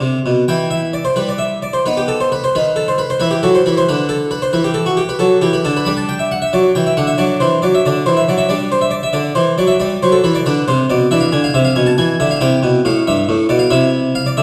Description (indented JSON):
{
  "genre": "classical, baroque-style suite movement for harpsichord",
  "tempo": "91 BPM (dotted quarters)",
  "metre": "12/8",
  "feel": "rubato",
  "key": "A minor from 11.1 s",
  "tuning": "A4 = 440 Hz",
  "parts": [
    { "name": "harpsichord", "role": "solo", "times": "0.0-14.4 s", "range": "G2 to B5", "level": "-15 LUFS", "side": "equal", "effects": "none" }
  ],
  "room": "wet recital hall reverb, RT60 1.3 s",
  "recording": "heard from further back in the room",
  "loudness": "-15 LUFS",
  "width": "mono",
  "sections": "0.5-14.4 A section",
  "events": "none",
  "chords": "0.5 Em; 1.8 B; 3.2 D13; 5.9 G5; 7.2 D; 8.5 G; 11.1 E5; 12.4 Am; 13.7 Am/C (rootless)"
}